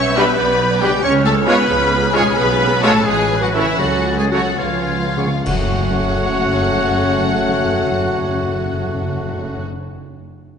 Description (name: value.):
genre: classical, dramatic, fast romantic movement for symphony orchestra.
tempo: 66-92 BPM (dotted quarters).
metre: 6/8.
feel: straight.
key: F# minor.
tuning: A4 = 439 Hz.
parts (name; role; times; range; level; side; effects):
warm symphonic violin section; melody; 0.0-9.6 s; E5 to C#6; -24 LUFS; left 4 dB; none.
dark clarinet; second line; 0.0-9.6 s; E4 to C#5; -26 LUFS; right 1 dB; none.
mellow large flute ensemble; second line; 0.0-9.6 s; E#6 to A6; -28 LUFS; left 3 dB; none.
rich studio violin section; second line; 0.0-9.6 s; E4 to C#5; -26 LUFS; left 3 dB; none.
warm oboe; second line; 0.0-9.6 s; E4 to F#5; -26 LUFS; right 1 dB; none.
mellow bassoon; accompaniment; 0.0-9.6 s; A3 to C#4; -26 LUFS; right 3 dB; none.
warm symphonic viola section; accompaniment; 0.0-9.6 s; A3 to E5; -26 LUFS; right 1 dB; none.
concert harp; arpeggios; 0.0-10.0 s; F#2 to C#5; -28 LUFS; left 8 dB; none.
dark symphonic cello section; bass; 0.0-9.6 s; E3 to C#4; -24 LUFS; right 3 dB; none.
rich symphonic double bass section; bass; 0.0-9.6 s; F#1 to C#2; -24 LUFS; right 3 dB; none.
bright trombone section; sustained chords; 0.2-9.6 s; G#2 to B3; -27 LUFS; right 3 dB; none.
warm French horn section; sustained chords; 0.2-9.6 s; C#4 to G#4; -24 LUFS; left 5 dB; none.
dark trumpet section; stabs; 0.2-9.6 s; B4 to C#5; -26 LUFS; right 2 dB; none.
timpani; percussion; 1.0-1.7, 3.8-9.6 s; F#2 to C#3; -25 LUFS; left 1 dB; none.
clash cymbals and concert bass drum; percussion; 5.5-6.6 s; none; -29 LUFS; equal; none.
room: wet scoring stage reverb, RT60 2.1 s.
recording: nothing above 10.3 kHz.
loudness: -14 LUFS.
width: side -7 dB against mid.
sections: 0.0-5.5 A section; 5.5-9.0 B section.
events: slowing down 1.7-5.5; timpani fill 4.6-5.5; band accent 5.5-6.0.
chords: 0.0 G/B; 1.0 C#; 2.4 C#7/B; 3.1 F#m/A; 3.8 F#m/C#; 4.6 C#7; 5.5 F#m.